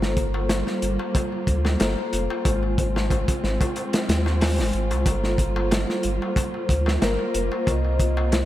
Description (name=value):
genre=trip hop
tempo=92 BPM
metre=4/4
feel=swing 54% on 16ths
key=G phrygian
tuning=A4 = 440 Hz
part: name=vibraphone with medium mallets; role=accompaniment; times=0.0-8.5 s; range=Ab3 to C5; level=-28 LUFS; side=left 2 dB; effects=tremolo, tape echo
part: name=dark symphonic string section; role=sustained chords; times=0.0-8.5 s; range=C3 to F4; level=-31 LUFS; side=right 3 dB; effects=none
part: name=warm sub bass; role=bass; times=0.0-8.5 s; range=F1 to Eb2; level=-24 LUFS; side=equal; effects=none
part: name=crunchy breakbeat drum kit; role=drums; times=0.0-8.5 s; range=hi-hat, kick drum, snare drum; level=-25 LUFS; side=equal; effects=none
part: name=darbuka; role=percussion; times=0.0-8.5 s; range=none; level=-36 LUFS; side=left 3 dB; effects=none
part: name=pure breathy sine lead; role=melody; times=6.4-8.5 s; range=Bb4 to Eb5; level=-29 LUFS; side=left 2 dB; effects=chorus, dub echo
room=moderate lush hall reverb, RT60 2.7 s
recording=dreamy mix soaked in reverb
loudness=-20 LUFS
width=side -14 dB against mid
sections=0.0-8.5 A section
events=none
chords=0.0 Gm11; 2.5 Ab6; 5.1 Gm11; 7.7 C7sus4